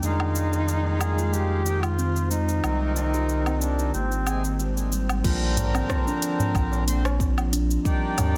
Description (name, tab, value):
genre	organic downtempo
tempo	92 BPM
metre	4/4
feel	swing 53% on 16ths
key	Bb mixolydian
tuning	A4 = 436 Hz
part	warm duduk	melody	0.0-4.6 s	C4 to Ab4	-32 LUFS	equal	delay
part	hand-pumped harmonium	accompaniment	0.0-8.4 s	C3 to C5	-34 LUFS	equal	vintage 12-bit sampler grit, sidechain pumping, delay
part	ethereal airy pad	sustained chords	0.0-5.2 s	Eb3 to G5	-37 LUFS	equal	ensemble chorus, built-in reverb, sidechain pumping
part	buzzing kalimba	arpeggios	0.0-8.4 s	G3 to Ab4	-34 LUFS	equal	delay
part	warm sub bass	bass	0.0-8.4 s	Ab1 to F2	-28 LUFS	equal	sidechain pumping
part	deep house drum kit	drums	0.0-8.3 s	cabasa, crash cymbal, hi-hat, rim click, woodblock	-34 LUFS	equal	studio reverb
part	quartz singing bowl	texture	0.0-8.4 s	F3 to F4	-38 LUFS	equal	none
part	electronic kick drum	drums	5.2-8.0 s	none	-28 LUFS	equal	studio reverb
part	tabla	percussion	5.6-8.3 s	none	-33 LUFS	equal	none
room	light reverb, small room ambience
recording	dense, heavily limited modern master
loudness	-24 LUFS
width	mono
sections	0.0-5.2 A section; 5.2-8.4 B section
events	none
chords	0.0 Fm7; 2.6 Cm7; 3.9 Abmaj7; 5.2 Bbadd9; 7.9 Ebmaj7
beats	| 0.03 0.68 1.33 1.98 | 2.64 3.29 3.94 4.59 | 5.24 5.90 6.55 7.20 | 7.85